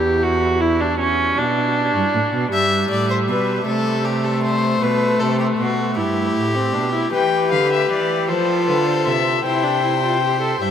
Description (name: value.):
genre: classical, baroque-style fugue for string quartet.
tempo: 52 BPM (dotted quarters).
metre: 6/8.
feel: straight.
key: E minor, C major from 7.1 s.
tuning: A4 = 440 Hz.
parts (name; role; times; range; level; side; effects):
warm viola; accompaniment; 0.0-10.7 s; G3 to A4; -20 LUFS; equal; none.
rich cello; bass; 0.0-10.7 s; E2 to F3; -23 LUFS; right 4 dB; none.
warm violin; second line; 2.5-10.7 s; F#4 to E5; -22 LUFS; left 3 dB; none.
warm violin; melody; 7.1-10.7 s; B4 to G5; -20 LUFS; left 9 dB; none.
room: wet huge ambient reverb, RT60 9.7 s.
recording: in a vast, echoing space.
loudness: -16 LUFS.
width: side -8 dB against mid.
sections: 0.0-7.1 A section; 7.1-10.7 B section.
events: none.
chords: 0.2 F#5/E; 1.4 Bm; 2.5 Em/G; 3.7 Am/C; 4.8 B5; 6.0 Em/G; 7.1 G6; 8.3 F; 9.4 C.